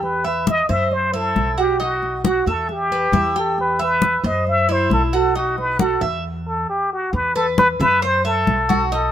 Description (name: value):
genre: latin, Cuban son and guajira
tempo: 135 BPM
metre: 4/4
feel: straight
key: E harmonic minor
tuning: A4 = 444 Hz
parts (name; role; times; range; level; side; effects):
- trumpet with plunger mute; melody; 0.0-9.1 s; F#4 to E5; -19 LUFS; equal; none
- Cuban tres; arpeggios; 0.0-9.1 s; D#4 to E5; -22 LUFS; right 3 dB; none
- upright bass; bass; 0.0-9.1 s; B1 to F#2; -25 LUFS; equal; none
- congas; percussion; 0.0-9.1 s; none; -22 LUFS; left 3 dB; none
room: light reverb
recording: minimal, uncompressed stereo recording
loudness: -16 LUFS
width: side -10 dB against mid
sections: 0.0-7.1 A section; 7.1-9.1 B section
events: stop 6.2-7.1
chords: 0.0 Emadd9; 0.9 F#m7b5; 1.8 B; 2.7 Emadd9; 4.5 Am69; 5.4 B; 6.2 Emadd9; 7.1 Esus2; 8.0 F#m7b5